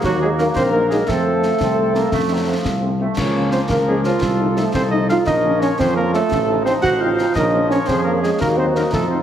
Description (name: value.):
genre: military-style march for wind band.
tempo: 115 BPM (dotted quarters).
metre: 6/8.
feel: straight.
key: Bb minor.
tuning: A4 = 440 Hz.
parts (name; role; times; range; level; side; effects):
mellow cornet; melody; 0.0-9.2 s; F4 to Gb5; -26 LUFS; equal; none.
mellow woodwind section; second line; 0.0-9.2 s; Eb4 to C5; -25 LUFS; left 3 dB; none.
clear trombone section; sustained chords; 0.0-9.2 s; F3 to Eb4; -26 LUFS; right 2 dB; none.
mellow tuba; bass; 0.0-9.2 s; A1 to F2; -22 LUFS; right 1 dB; none.
concert snare drum, concert bass drum and clash cymbals; drums; 0.0-9.1 s; none; -26 LUFS; left 1 dB; none.
warm euphonium; second line; 0.1-9.2 s; F3 to Gb4; -20 LUFS; right 2 dB; none.
mellow French horn section; accompaniment; 0.2-9.2 s; F3 to Eb4; -27 LUFS; left 4 dB; none.
room: wet large studio reverb, RT60 1.2 s.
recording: heavily compressed radio sound, multiband compression.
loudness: -15 LUFS.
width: side -10 dB against mid.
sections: 0.0-9.2 A section.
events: none.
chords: 0.0 Ebm; 1.1 F; 3.2 Bbm/Db; 4.2 F7/C; 5.3 Bbm; 6.3 F7/A; 7.4 Bbm; 8.4 Ebm.